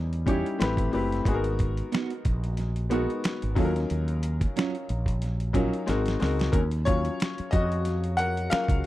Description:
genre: R&B, neo-soul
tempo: 91 BPM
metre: 4/4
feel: swing 57% on 16ths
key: Eb minor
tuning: A4 = 439 Hz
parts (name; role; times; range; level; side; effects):
- warm grand piano; accompaniment; 0.0-8.9 s; Gb3 to Gb5; -29 LUFS; left 3 dB; none
- mellow fretless electric bass; bass; 0.0-8.8 s; Gb1 to F2; -28 LUFS; equal; none
- dusty soul sampler-style drum kit; drums; 0.1-8.9 s; finger snaps, hi-hat, kick drum, snare drum; -28 LUFS; equal; none
- nylon-string guitar; second line; 0.3-5.7 s; Gb3 to G4; -30 LUFS; right 8 dB; slapback echo
room: little or no reverb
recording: dry, close 1970s-style studio recording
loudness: -24 LUFS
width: side -16 dB against mid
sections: 0.0-6.5 A section; 6.5-8.9 B section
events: drum fill 5.9-6.5; grand piano solo 6.5-8.9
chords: 0.0 Eb7b9; 0.6 Am7; 1.3 Abm7; 3.6 Ebm9; 5.9 Ab9; 6.5 Ebm9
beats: 0.60 | 1.26 1.92 2.58 3.23 | 3.89 4.55 5.21 5.87 | 6.53 7.19 7.85 8.51

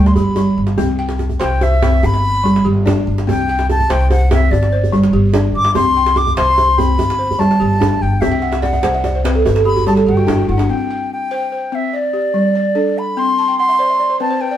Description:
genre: west african traditional, West African string and xylophone music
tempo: 97 BPM (dotted quarters)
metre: 12/8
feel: straight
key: C lydian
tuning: A4 = 441 Hz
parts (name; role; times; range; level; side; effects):
- bright wooden flute; melody; 0.0-14.6 s; D5 to D6; -17 LUFS; left 1 dB; none
- balafon; arpeggios; 0.0-14.6 s; G3 to C6; -17 LUFS; right 1 dB; none
- upright bass; bass; 0.0-10.7 s; G1 to D2; -17 LUFS; equal; none
- djembe; percussion; 0.1-10.7 s; none; -21 LUFS; right 2 dB; none
room: moderate studio reverb, RT60 0.9 s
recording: band playing live in one room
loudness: -12 LUFS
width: side -11 dB against mid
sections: 0.8-10.7 A section; 10.7-14.6 B section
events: flute solo 0.8-10.7; balafon fill 8.3-10.7, 13.4-14.6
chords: 0.0 G; 0.8 C; 2.0 G; 3.3 C5; 4.5 G5; 5.7 C5; 7.0 G; 8.2 C; 9.5 G5; 10.7 C5; 11.9 G5; 13.2 Cmaj13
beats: 0.16 | 0.78 1.40 2.02 2.65 | 3.27 3.89 4.51 5.13 | 5.75 6.37 6.99 7.60 | 8.22 8.84 9.46 10.08 | 10.69 11.31 11.93 12.55 | 13.17 13.79 14.41

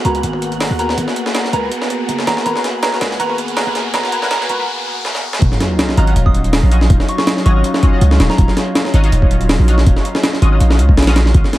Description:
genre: drum and bass, jungle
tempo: 162 BPM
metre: 4/4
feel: swing 53% on 16ths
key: Eb minor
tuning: A4 = 440 Hz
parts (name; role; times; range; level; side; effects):
- lush unison pad; sustained chords; 0.0-11.6 s; Gb3 to Ab4; -21 LUFS; equal; chorus, vintage 12-bit sampler grit
- band-passed chord stab; stabs; 0.0-11.1 s; Db4 to Ab5; -24 LUFS; left 2 dB; phaser, ensemble chorus, vintage 12-bit sampler grit, dub echo
- long sustained 808-style bass; bass; 0.0-11.4 s; Eb1 to Eb2; -14 LUFS; equal; none
- jungle sampler-style drum kit; drums; 0.0-11.6 s; hi-hat, kick drum, snare drum; -16 LUFS; equal; high-pass filter on hats, high-pass filter on kick, high-pass filter on snare, high-pass filter on room
- riser and sub drop; sound effects; 0.3-6.9 s; none; -26 LUFS; equal; none
- wind-like tuned noise texture; texture; 0.0-4.7 s; Gb5; -32 LUFS; right 3 dB; built-in reverb
- soft synth bell; melody; 0.1-8.4 s; Bb5 to Eb6; -24 LUFS; right 2 dB; chorus, vintage 12-bit sampler grit, dub echo
room: light reverb, digital ambience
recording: echo-heavy mix, vinyl crackle, high-pass filter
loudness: -12 LUFS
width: side -16 dB against mid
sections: 0.0-5.4 A section; 5.4-11.6 B section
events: build-up 0.0-5.4; filter sweep on analog synth pad 0.0-5.4; filter sweep on synth stab 0.0-5.4; filter sweep 0.0-5.4; riser 0.3-5.4; break 4.7-5.4; drum fill 5.0-5.4; drop 5.4-11.6; impact 5.4-6.9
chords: 0.0 Abm9; 5.4 Ebm9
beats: 0.23 0.60 | 0.97 1.34 1.72 2.09 | 2.46 2.83 3.20 3.57 | 3.94 4.31 4.68 5.05 | 5.42 5.79 6.16 6.53 | 6.90 7.27 7.64 8.01 | 8.38 8.75 9.12 9.49 | 9.86 10.23 10.61 10.97 | 11.35

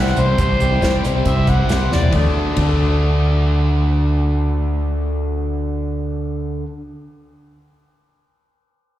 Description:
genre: folk rock and heartland rock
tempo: 137 BPM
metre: 4/4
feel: straight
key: D mixolydian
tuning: A4 = 440 Hz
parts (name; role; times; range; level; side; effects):
- overdriven harmonica; melody; 0.0-2.1 s; C5 to F#5; -23 LUFS; equal; slapback echo
- picked swing-style acoustic guitar; accompaniment; 0.0-6.8 s; C3 to C5; -26 LUFS; left 5 dB; slapback echo
- biting overdriven guitar; riff; 0.0-6.7 s; C3 to A4; -24 LUFS; right 1 dB; slapback echo
- fingered electric bass; bass; 0.0-6.6 s; C2 to E2; -18 LUFS; equal; none
- unplugged drum kit; drums; 0.1-2.7 s; hi-hat, kick drum, ride cymbal, snare drum, toms; -23 LUFS; equal; none
room: small room reverb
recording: live gig heard through the venue's PA, recital hall reverb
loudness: -16 LUFS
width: side -13 dB against mid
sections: 0.0-2.1 A section; 2.1-5.6 B section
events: harmonica solo 0.0-2.1; drum fill 1.9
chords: 0.0 C; 2.1 D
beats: | 0.38 0.82 1.26 1.69 | 2.13 2.57 3.01 3.44 | 3.88 4.32 4.76 5.20

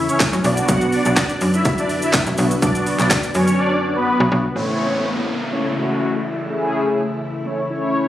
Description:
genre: dance-pop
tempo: 124 BPM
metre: 4/4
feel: straight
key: A major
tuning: A4 = 440 Hz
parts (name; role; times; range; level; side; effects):
- ensemble organ-string; sustained chords; 0.0-8.1 s; C#3 to F#4; -26 LUFS; left 1 dB; ensemble chorus, sidechain pumping
- slap-like FM bass; bass; 0.0-8.1 s; A1 to F#2; -20 LUFS; equal; sidechain pumping
- filtered supersaw swell; melody; 0.1-4.2 s; B3 to F#5; -21 LUFS; equal; phaser, ping-pong delay
- house drum kit; drums; 0.1-3.6 s; handclaps, hi-hat, kick drum, shaker, snare drum; -20 LUFS; equal; overdrive
- mellow synth brass; accompaniment; 0.4-8.1 s; A3 to C#5; -21 LUFS; equal; chorus, sidechain pumping
- downlifter; sound effects; 4.6-8.1 s; none; -27 LUFS; left 1 dB; none
room: light reverb, digital ambience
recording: recorded on a phone in the room, studio reverb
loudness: -16 LUFS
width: side -12 dB against mid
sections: 0.0-4.6 A section; 4.6-8.1 B section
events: drop 0.0-4.6; silent gap 3.6-4.6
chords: 0.4 Bm; 4.6 A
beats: 0.20 | 0.69 1.17 1.66 2.14 | 2.62 3.11 3.59 4.07 | 4.56 5.04 5.53 6.01 | 6.49 6.98 7.46 7.95

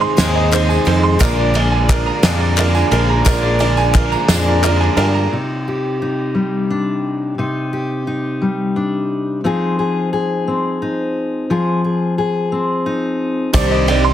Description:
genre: indie folk with a building arrangement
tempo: 58 BPM (dotted quarters)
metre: 6/8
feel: straight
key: C minor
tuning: A4 = 440 Hz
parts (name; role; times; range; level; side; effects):
- dark concert grand piano; accompaniment; 0.0-5.3, 13.5-14.1 s; Ab1 to Eb5; -22 LUFS; right 5 dB; none
- picked twelve-string acoustic guitar; accompaniment; 0.0-5.3, 13.5-14.1 s; Ab2 to Ab4; -20 LUFS; left 7 dB; none
- mellow tonewheel organ; sustained chords; 0.0-5.3, 13.5-14.1 s; C3 to Ab4; -25 LUFS; right 2 dB; slow rotary speaker
- clear upright piano; arpeggios; 0.0-5.3, 13.5-14.1 s; Bb4 to C6; -20 LUFS; right 7 dB; none
- picked electric bass; bass; 0.0-5.3, 13.5-14.1 s; Bb1 to G2; -17 LUFS; equal; none
- cloth-damped thuddy drum kit; drums; 0.2-5.1, 13.5-14.0 s; kick drum, ride cymbal, snare drum; -20 LUFS; equal; none
- tambourine; percussion; 0.2-4.5, 13.5-13.7 s; none; -30 LUFS; right 12 dB; none
- group handclap; percussion; 0.5-4.9 s; none; -25 LUFS; left 6 dB; none
- fingerpicked steel-string acoustic guitar; accompaniment; 5.3-13.5 s; C3 to Ab4; -17 LUFS; left 2 dB; none
room: light reverb, small room ambience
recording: dense, heavily limited modern master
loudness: -14 LUFS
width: side -11 dB against mid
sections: 0.0-5.3 A section; 5.3-13.5 B section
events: none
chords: 0.0 Ab; 1.2 Bb7; 5.3 Cmadd9; 9.4 Fm7; 13.5 Cmadd9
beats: 0.18 | 1.21 2.23 | 3.26 4.29 | 5.32 6.35 | 7.38 8.40 | 9.44 10.46 | 11.49 12.52 | 13.54

